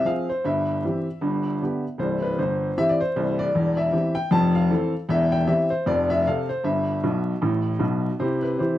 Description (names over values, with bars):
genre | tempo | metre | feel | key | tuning
jazz, stride piano | 155 BPM | 4/4 | swing 59% on 8ths | C major | A4 = 441 Hz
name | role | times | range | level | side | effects
clear upright piano | solo | 0.0-8.8 s | C1 to A5 | -21 LUFS | left 1 dB | none
room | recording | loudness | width
moderate studio ambience, RT60 0.5 s | dark, warm production, vinyl crackle | -21 LUFS | side -13 dB against mid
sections
0.0-8.2 A section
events
upright piano fill 7.0-8.2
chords
0.4 C/G; 1.2 G; 2.0 C; 3.5 C/E; 4.3 Fmaj7; 5.1 C/E; 5.9 F; 6.6 G6; 7.4 Asus2; 8.2 C